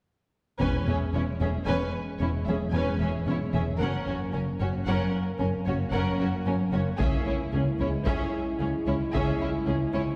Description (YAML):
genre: cinematic, epic orchestral film score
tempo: 75 BPM (dotted quarters)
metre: 12/8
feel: straight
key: unclear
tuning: A4 = 440 Hz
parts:
  - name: rich symphonic violin section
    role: melody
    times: 0.6-10.0 s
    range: G#4 to G#5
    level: -42 LUFS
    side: equal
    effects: none
  - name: warm symphonic violin section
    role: second line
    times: 0.6-10.0 s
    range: C#4 to B4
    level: -38 LUFS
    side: equal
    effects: none
  - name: rich symphonic viola section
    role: accompaniment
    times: 0.6-10.0 s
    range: C#4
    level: -36 LUFS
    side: equal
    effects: none
  - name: mellow French horn section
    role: sustained chords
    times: 0.6-10.2 s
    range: G#3 to E4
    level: -36 LUFS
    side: equal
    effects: none
  - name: rich symphonic cello section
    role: bass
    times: 0.6-10.0 s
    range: C#2 to F#2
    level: -33 LUFS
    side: equal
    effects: none
  - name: rich symphonic double bass section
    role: bass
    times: 0.6-10.0 s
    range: E1 to C#2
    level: -33 LUFS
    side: equal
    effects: none
  - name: taiko ensemble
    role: drums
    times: 0.6-1.6, 7.0-9.6 s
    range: none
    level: -35 LUFS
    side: equal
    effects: none
room: wet scoring stage reverb, RT60 1.4 s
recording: heard from further back in the room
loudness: -28 LUFS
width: mono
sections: 0.6-10.2 A section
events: build-up 0.6-10.2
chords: 0.6 E6; 3.8 F#; 7.0 C#m